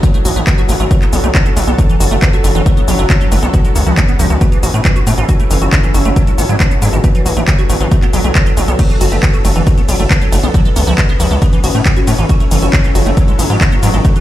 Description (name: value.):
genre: uplifting trance.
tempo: 137 BPM.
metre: 4/4.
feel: straight.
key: F# minor.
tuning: A4 = 440 Hz.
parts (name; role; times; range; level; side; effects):
shimmering ambient pad; sustained chords; 0.0-14.2 s; F#3 to A4; -19 LUFS; left 1 dB; chorus, built-in reverb, sidechain pumping.
liquid acid bass; arpeggios; 0.0-14.2 s; E3 to F#4; -20 LUFS; right 2 dB; phaser, ensemble chorus, sidechain pumping, dub echo.
electronic kick drum; drums; 0.0-14.1 s; none; -12 LUFS; equal; none.
house drum kit; drums; 0.0-14.2 s; crash cymbal, handclaps, hi-hat, ride cymbal, shaker; -20 LUFS; left 1 dB; none.
gritty driven synth bass; bass; 0.3-14.0 s; F#1 to A2; -13 LUFS; equal; sidechain pumping.
room: little or no reverb.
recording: played on a big sound system in a bare room, large studio reverb.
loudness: -9 LUFS.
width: side -14 dB against mid.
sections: 0.0-14.2 A section.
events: none.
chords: 0.0 A6; 0.9 Bm7; 1.8 F#m7; 2.7 Bm7; 3.5 C#7; 4.4 A6; 5.3 F#m7; 6.2 G#m7b5; 7.0 A6; 7.9 Bm7; 8.8 F#m7; 9.7 Bm7; 10.5 C#7; 11.4 A6; 12.3 F#m7; 13.2 G#m7b5.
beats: | 0.03 0.47 0.91 1.35 | 1.78 2.22 2.66 3.10 | 3.54 3.97 4.41 4.85 | 5.29 5.73 6.16 6.60 | 7.04 7.48 7.92 8.35 | 8.79 9.23 9.67 10.11 | 10.54 10.98 11.42 11.86 | 12.29 12.73 13.17 13.61 | 14.05.